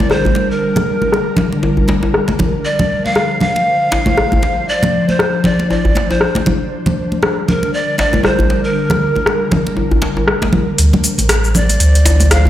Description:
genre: afro house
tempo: 118 BPM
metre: 4/4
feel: swing 58% on 16ths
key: D minor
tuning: A4 = 439 Hz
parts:
  - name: breathy bright large pan pipes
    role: melody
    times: 0.0-12.5 s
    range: Bb4 to F5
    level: -18 LUFS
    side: equal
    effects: vintage 12-bit sampler grit, tape echo
  - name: ethereal airy pad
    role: sustained chords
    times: 0.0-12.5 s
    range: D3 to C5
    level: -19 LUFS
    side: left 1 dB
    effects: ensemble chorus, built-in reverb
  - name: deep house drum kit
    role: drums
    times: 0.0-12.4 s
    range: cabasa, hi-hat, rim click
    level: -18 LUFS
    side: left 2 dB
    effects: overdrive, low-pass filter on perc, low-pass filter on snare, low-pass filter on hats
  - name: congas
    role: percussion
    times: 0.0-12.5 s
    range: none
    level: -18 LUFS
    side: equal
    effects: none
  - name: djembe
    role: percussion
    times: 0.0-12.5 s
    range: none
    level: -18 LUFS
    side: equal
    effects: none
  - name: warm sub bass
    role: bass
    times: 10.8-12.5 s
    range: A1 to D2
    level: -11 LUFS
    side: equal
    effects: none
room: moderate lush hall reverb, RT60 1.6 s, studio ambience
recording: played on a big sound system in a bare room, large studio reverb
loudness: -12 LUFS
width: side -12 dB against mid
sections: 0.0-10.8 A section; 10.8-12.5 B section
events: build-up 10.8-12.5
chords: 0.0 Gm/D; 2.6 Dm7; 6.7 Gm/D; 10.8 Dm7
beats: 0.11 | 0.62 1.12 1.63 2.14 | 2.65 3.16 3.67 4.17 | 4.68 5.19 5.70 6.21 | 6.72 7.23 7.73 8.24 | 8.75 9.26 9.77 10.28 | 10.79 11.29 11.80 12.31

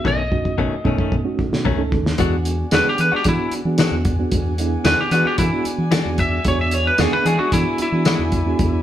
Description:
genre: straight-eighth soul blues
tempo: 112 BPM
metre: 4/4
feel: straight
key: E mixolydian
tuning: A4 = 440 Hz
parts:
  - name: lightly driven lead guitar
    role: melody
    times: 0.0-8.8 s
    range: E4 to E5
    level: -21 LUFS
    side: equal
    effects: none
  - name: mellow reed electric piano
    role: accompaniment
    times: 0.0-8.8 s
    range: G#3 to A4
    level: -24 LUFS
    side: right 3 dB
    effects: fast tremolo
  - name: direct-recorded clean electric guitar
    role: stabs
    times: 0.0-8.2 s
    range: B2 to F#4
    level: -24 LUFS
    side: left 6 dB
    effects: none
  - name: fingered electric bass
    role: bass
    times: 0.0-8.8 s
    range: B1 to E3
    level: -23 LUFS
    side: equal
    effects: none
  - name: cloth-damped thuddy drum kit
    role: drums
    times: 0.1-8.7 s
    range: hi-hat, kick drum, snare drum, tambourine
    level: -22 LUFS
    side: equal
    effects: none
  - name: warm horn section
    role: sustained chords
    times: 2.2-8.8 s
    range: D5 to G#5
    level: -32 LUFS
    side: equal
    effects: none
room: moderate stone room reverb, RT60 1.1 s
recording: band playing live in one room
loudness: -16 LUFS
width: side -11 dB against mid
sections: 0.0-2.2 A section; 2.2-8.8 B section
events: drum fill 0.1-2.2; lead electric guitar solo 2.2-8.8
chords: 0.1 B9; 2.2 E9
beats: | 0.05 0.58 1.12 1.65 | 2.19 2.72 3.25 3.79 | 4.32 4.86 5.39 5.92 | 6.46 6.99 7.53 8.06 | 8.60

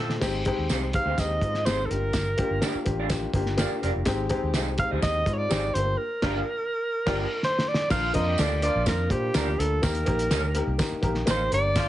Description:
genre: uptempo 1960s-style soul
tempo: 125 BPM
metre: 4/4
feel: straight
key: unclear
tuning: A4 = 438 Hz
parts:
  - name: clear horn section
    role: second line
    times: 0.0-0.1, 6.2-11.9 s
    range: F3 to Bb4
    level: -33 LUFS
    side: equal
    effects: none
  - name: dark upright piano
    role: accompaniment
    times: 0.0-11.9 s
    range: Ab3 to C5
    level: -30 LUFS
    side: left 2 dB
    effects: none
  - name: vintage muted fingered electric bass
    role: bass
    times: 0.0-11.9 s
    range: F1 to Bb2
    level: -29 LUFS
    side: equal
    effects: none
  - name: cloth-damped thuddy drum kit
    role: drums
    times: 0.1-11.9 s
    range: crash cymbal, hi-hat, kick drum, snare drum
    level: -28 LUFS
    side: equal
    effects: none
  - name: tambourine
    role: percussion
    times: 0.2-11.9 s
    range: none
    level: -39 LUFS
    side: right 6 dB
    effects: none
  - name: electric guitar through a small old amp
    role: stabs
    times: 0.7-11.4 s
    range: C4 to Eb5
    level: -33 LUFS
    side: right 3 dB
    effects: tube saturation, lush chorus
  - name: warm alto saxophone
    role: melody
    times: 0.9-11.9 s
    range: G4 to F5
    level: -27 LUFS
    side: right 1 dB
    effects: plate reverb
room: light reverb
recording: heavily compressed radio sound, nothing above 10.7 kHz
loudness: -23 LUFS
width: side -13 dB against mid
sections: 0.2-7.9 A section; 7.9-11.9 B section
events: drum fill 0.0, 7.4-7.9; band accent 0.0, 6.0-7.9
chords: 0.2 Abmaj7; 1.9 Gm7; 4.1 Abmaj7; 5.7 Gm7; 7.9 Bb; 9.8 Eb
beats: | 0.22 0.70 1.18 1.66 | 2.14 2.62 3.10 3.59 | 4.07 4.55 5.03 5.51 | 5.99 6.47 6.95 7.43 | 7.91 8.39 8.87 9.35 | 9.83 10.31 10.79 11.28 | 11.76

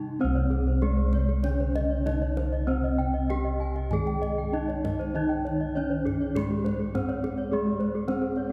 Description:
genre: Balinese gamelan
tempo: 98 BPM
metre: 4/4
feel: uneven beats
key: C pelog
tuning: A4 = 440 Hz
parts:
  - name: gamelan-type bronze metallophone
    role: melody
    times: 0.0-8.5 s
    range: Ab3 to Ab4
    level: -32 LUFS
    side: equal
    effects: none
  - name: gamelan-type bronze metallophone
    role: accompaniment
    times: 0.0-8.5 s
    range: C3 to Ab3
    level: -40 LUFS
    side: equal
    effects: none
  - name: gamelan-type bossed gongs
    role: bass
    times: 0.0-8.5 s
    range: C2 to Ab4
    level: -31 LUFS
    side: equal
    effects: none
  - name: gamelan-type bronze metallophone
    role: arpeggios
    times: 0.2-8.5 s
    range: Ab4 to Ab5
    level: -38 LUFS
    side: equal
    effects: none
  - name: gamelan-type bronze metallophone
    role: arpeggios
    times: 0.4-8.4 s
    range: G4 to G5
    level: -39 LUFS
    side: equal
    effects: none
  - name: kendang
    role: percussion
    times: 0.5-8.5 s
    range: none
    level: -42 LUFS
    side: equal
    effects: none
room: wet church reverb, RT60 3.8 s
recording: recorded in a church or concert hall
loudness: -27 LUFS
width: mono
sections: 0.2-8.5 A section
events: break 0.0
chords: none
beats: | 0.20 0.82 1.44 2.06 | 2.68 3.29 3.91 4.53 | 5.15 5.76 6.36 6.95 | 7.52 8.08

